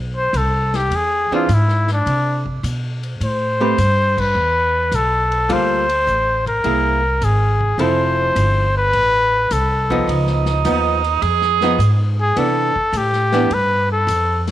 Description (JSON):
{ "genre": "jazz, small-group swing and bop", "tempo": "105 BPM", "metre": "4/4", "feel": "swing 69% on 8ths", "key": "C major", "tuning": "A4 = 440 Hz", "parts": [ { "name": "upright bass", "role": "bass", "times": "0.0-14.5 s", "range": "F1 to C3", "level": "-20 LUFS", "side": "equal", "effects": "none" }, { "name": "clear trumpet", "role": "melody", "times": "0.2-14.4 s", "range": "D4 to C5", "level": "-17 LUFS", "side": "left 1 dB", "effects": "none" }, { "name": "vintage drum kit", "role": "drums", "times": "0.3-14.5 s", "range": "crash cymbal, hi-hat, kick drum, ride cymbal, snare drum", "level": "-32 LUFS", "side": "left 4 dB", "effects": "none" }, { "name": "archtop guitar, miked and amplified", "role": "accompaniment", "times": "1.3-13.5 s", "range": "E3 to B4", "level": "-20 LUFS", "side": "right 1 dB", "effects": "none" }, { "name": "bright tenor saxophone", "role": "second line", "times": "10.1-12.0 s", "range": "Eb4 to Ab4", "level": "-19 LUFS", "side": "right 12 dB", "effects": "none" } ], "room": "moderate spring reverb, RT60 2.4 s", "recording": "1960s-style stereo", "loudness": "-15 LUFS", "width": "side -13 dB against mid", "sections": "0.0-14.5 A section", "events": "band accent 4.1", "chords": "0.0 Cmaj7(no3); 0.9 E7b13; 3.2 Am9; 5.5 Gm9; 6.6 Caug7; 7.8 Fmaj7; 10.1 Db9; 12.4 Cmaj9" }